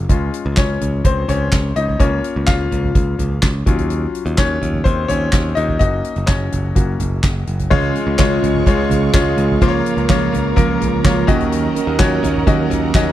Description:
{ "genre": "piano-driven pop", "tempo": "126 BPM", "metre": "4/4", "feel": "straight", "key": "Db major", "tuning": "A4 = 443 Hz", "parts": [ { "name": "bright grand piano", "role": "accompaniment", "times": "0.0-13.1 s", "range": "Db3 to F5", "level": "-19 LUFS", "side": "left 4 dB", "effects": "none" }, { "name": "modern bright picked electric bass", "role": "bass", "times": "0.0-13.1 s", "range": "Gb1 to Eb2", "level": "-20 LUFS", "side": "equal", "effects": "none" }, { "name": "soft-mallet drum kit", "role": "drums", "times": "0.1-13.1 s", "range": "crash cymbal, handclaps, hi-hat, kick drum, snare drum, toms", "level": "-18 LUFS", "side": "equal", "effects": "none" }, { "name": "rich studio string section", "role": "sustained chords", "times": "7.7-13.1 s", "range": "Ab4 to Db6", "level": "-29 LUFS", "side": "right 3 dB", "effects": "none" }, { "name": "picked steel-string acoustic guitar", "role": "riff", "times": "7.7-13.1 s", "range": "Db3 to Bb4", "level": "-20 LUFS", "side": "right 11 dB", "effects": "none" } ], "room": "little or no reverb", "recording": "dry, close 1970s-style studio recording", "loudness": "-14 LUFS", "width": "side -13 dB against mid", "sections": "0.0-7.7 A section; 7.7-13.1 B section", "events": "grand piano solo 0.0-7.7", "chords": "0.1 Db; 2.0 Bbm/Db; 3.7 Ebm7; 5.8 Gb; 7.7 Db; 9.6 Bbm/Db; 11.3 Ebm7", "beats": "| 0.10 0.57 1.05 1.52 | 2.00 2.48 2.95 3.43 | 3.90 4.38 4.86 5.33 | 5.81 6.29 6.76 7.24 | 7.71 8.19 8.67 9.14 | 9.62 10.09 10.57 11.04 | 11.52 12.00 12.47 12.95" }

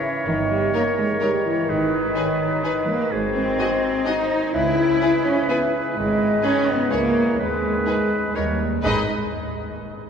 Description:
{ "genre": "cinematic, playful, whimsical film cue", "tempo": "126 BPM", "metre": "3/4", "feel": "straight", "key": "G# minor", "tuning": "A4 = 445 Hz", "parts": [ { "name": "clear clarinet", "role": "second line", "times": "0.0-9.0 s", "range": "F#4 to A#4", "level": "-32 LUFS", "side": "equal", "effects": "none" }, { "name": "clear oboe", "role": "second line", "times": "0.0-9.0 s", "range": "G#4 to C#5", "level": "-29 LUFS", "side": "equal", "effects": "none" }, { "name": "hollow concert flute", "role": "second line", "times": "0.0-9.1 s", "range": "A#4 to G#5", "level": "-29 LUFS", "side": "equal", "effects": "none" }, { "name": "mellow bassoon", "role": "accompaniment", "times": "0.0-9.0 s", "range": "D#3 to E3", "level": "-29 LUFS", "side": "equal", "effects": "none" }, { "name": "vibraphone with soft mallets", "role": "melody", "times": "0.3-9.1 s", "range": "D#4 to E5", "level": "-28 LUFS", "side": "right 2 dB", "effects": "none" }, { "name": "clear French horn section", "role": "sustained chords", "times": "0.3-9.0 s", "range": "D#3 to E4", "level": "-27 LUFS", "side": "left 3 dB", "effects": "none" }, { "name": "clear studio double bass section", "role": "bass", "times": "0.3-9.1 s", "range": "G1 to D#2", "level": "-30 LUFS", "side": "right 3 dB", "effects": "none" }, { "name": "rich studio cello section", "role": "bass", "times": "0.3-9.1 s", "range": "D#3 to E4", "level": "-24 LUFS", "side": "right 1 dB", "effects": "none" }, { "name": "rich studio violin section", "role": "melody", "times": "0.7-9.1 s", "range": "B4 to D#5", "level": "-35 LUFS", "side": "left 3 dB", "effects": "none" }, { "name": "clear studio violin section", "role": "second line", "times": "0.7-9.1 s", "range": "G#4 to B4", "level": "-35 LUFS", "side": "left 2 dB", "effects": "none" }, { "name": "warm studio viola section", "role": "accompaniment", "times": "0.7-9.1 s", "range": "D#4 to F#4", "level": "-35 LUFS", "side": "equal", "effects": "none" } ], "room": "wet cathedral reverb, RT60 5.0 s", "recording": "recorded in a church or concert hall", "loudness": "-19 LUFS", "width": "side -7 dB against mid", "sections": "0.0-8.8 A section; 8.8-10.1 B section", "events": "none", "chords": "0.3 D#7/G; 1.7 G#m; 3.1 G#7; 4.5 C#m7; 6.0 G#m; 6.9 C#m; 7.4 G#m/D#; 8.4 D#7; 8.8 G#m", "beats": "| 0.26 0.73 1.21 | 1.69 2.16 2.63 | 3.11 3.58 4.06 | 4.53 5.01 5.49 | 5.96 6.44 6.92 | 7.40 7.88 8.36 | 8.84" }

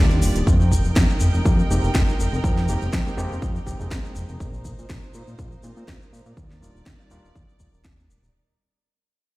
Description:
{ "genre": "nu-disco, nu disco", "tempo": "122 BPM", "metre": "4/4", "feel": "swing 54% on 16ths", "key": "F dorian", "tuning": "A4 = 439 Hz", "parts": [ { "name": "overdriven reed electric piano", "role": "accompaniment", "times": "0.0-7.3 s", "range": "G3 to Ab4", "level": "-31 LUFS", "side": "equal", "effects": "sidechain pumping, low-pass filter, digital delay" }, { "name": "dark studio string section", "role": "sustained chords", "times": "0.0-8.3 s", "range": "G3 to G5", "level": "-32 LUFS", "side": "right 2 dB", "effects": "sidechain pumping" }, { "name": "fat analog bass", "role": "bass", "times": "0.0-8.3 s", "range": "Eb1 to Bb2", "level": "-22 LUFS", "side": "equal", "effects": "none" }, { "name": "house drum kit", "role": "drums", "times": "0.1-8.0 s", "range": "hi-hat, snare drum", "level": "-28 LUFS", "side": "equal", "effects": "studio reverb" }, { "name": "tube shaker", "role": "percussion", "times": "0.1-8.3 s", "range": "none", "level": "-37 LUFS", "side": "left 3 dB", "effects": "none" }, { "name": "electronic kick drum", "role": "drums", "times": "0.5-8.0 s", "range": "none", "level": "-21 LUFS", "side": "equal", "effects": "studio reverb" } ], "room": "small room ambience", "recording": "played on a big sound system in a bare room, stone room reverb", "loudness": "-18 LUFS", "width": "side -20 dB against mid", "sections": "0.0-8.3 A section", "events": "fade-out 0.0-8.3; filter sweep on reed electric piano 0.0-8.3", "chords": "0.5 Fm11; 4.4 Bb9sus4; 6.4 Ebmaj7", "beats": "| 0.47 0.96 1.45 1.94 | 2.44 2.93 3.42 3.91 | 4.40 4.89 5.39 5.88 | 6.37 6.86 7.35 7.85" }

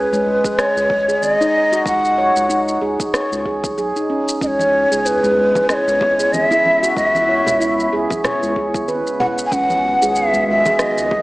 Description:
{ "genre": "organic downtempo", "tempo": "94 BPM", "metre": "4/4", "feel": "swing 57% on 16ths", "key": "unclear", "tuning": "A4 = 441 Hz", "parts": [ { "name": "breathy ney", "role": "melody", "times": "0.0-11.2 s", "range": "B4 to G#5", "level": "-16 LUFS", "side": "equal", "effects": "digital delay, slapback echo" }, { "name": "round analog bass", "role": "bass", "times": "0.0-11.2 s", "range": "G#1 to C#2", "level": "-30 LUFS", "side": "equal", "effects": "sidechain pumping" }, { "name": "handpan", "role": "arpeggios", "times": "0.1-11.1 s", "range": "G#3 to C#5", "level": "-20 LUFS", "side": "equal", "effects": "digital delay, slapback echo" }, { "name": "electronic shaker and rim click", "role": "drums", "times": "0.1-11.1 s", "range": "none", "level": "-24 LUFS", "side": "equal", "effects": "slapback echo" }, { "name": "electronic kick drum", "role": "drums", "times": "0.4-11.2 s", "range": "none", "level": "-28 LUFS", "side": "equal", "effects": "none" }, { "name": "warbly tape-like pad", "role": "sustained chords", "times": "5.1-11.2 s", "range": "C#3 to F#4", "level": "-28 LUFS", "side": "equal", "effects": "chorus, built-in reverb, sidechain pumping" }, { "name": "congas and bongos", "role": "percussion", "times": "4.6-11.2 s", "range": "none", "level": "-29 LUFS", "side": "left 1 dB", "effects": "none" } ], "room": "wet lush hall reverb, RT60 1.9 s, small room ambience", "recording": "big arena sound, small speaker sound", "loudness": "-14 LUFS", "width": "side -20 dB against mid", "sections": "0.0-11.2 A section", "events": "none", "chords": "0.0 B (rootless); 4.4 C#m7; 9.5 B", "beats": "0.58 1.22 | 1.86 2.50 3.14 3.77 | 4.41 5.05 5.69 6.33 | 6.97 7.61 8.24 8.88 | 9.52 10.16 10.80" }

